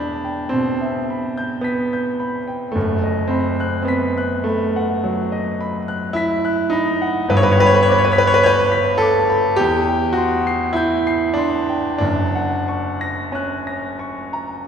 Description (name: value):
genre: classical, romantic nocturne for solo piano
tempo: 45-55 BPM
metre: 4/4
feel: rubato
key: unclear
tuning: A4 = 440 Hz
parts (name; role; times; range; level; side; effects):
- clear grand piano; solo; 0.0-14.7 s; E1 to C7; -16 LUFS; equal; none
room: wet scoring stage reverb, RT60 1.9 s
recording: heard from further back in the room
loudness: -16 LUFS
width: side -7 dB against mid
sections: 0.0-14.7 A section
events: none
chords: 0.0 Em; 2.8 B7/F#; 7.3 G; 9.6 C/E; 12.0 F#